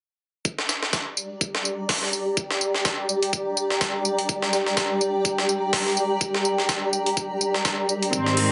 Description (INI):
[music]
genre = bass house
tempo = 125 BPM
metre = 4/4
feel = swing 56% on 16ths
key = G phrygian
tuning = A4 = 440 Hz
[part]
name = breakbeat sampler-style drum kit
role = drums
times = 0.5-8.5 s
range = hi-hat, snare drum, tambourine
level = -27 LUFS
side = equal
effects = high-pass filter on perc, high-pass filter on snare, high-pass filter on hats, high-pass filter on room
[part]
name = electronic kick drum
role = drums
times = 0.5-8.2 s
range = none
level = -32 LUFS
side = equal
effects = high-pass filter on kick, high-pass filter on room
[part]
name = granular cloud pad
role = texture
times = 1.2-8.5 s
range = G4 to Bb5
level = -27 LUFS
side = equal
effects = built-in reverb, sidechain pumping
[part]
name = rich studio string section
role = sustained chords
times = 8.1-8.5 s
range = Ab2 to C4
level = -23 LUFS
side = equal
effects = sidechain pumping
[part]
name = electronic hi-hat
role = drums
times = 8.4-8.5 s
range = none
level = -26 LUFS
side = equal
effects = overdrive
[sound]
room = moderate plate reverb, RT60 1.5 s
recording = heavily compressed radio sound, nothing above 10.8 kHz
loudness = -24 LUFS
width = mono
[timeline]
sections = 0.5-8.5 A section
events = none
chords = 0.5 Gm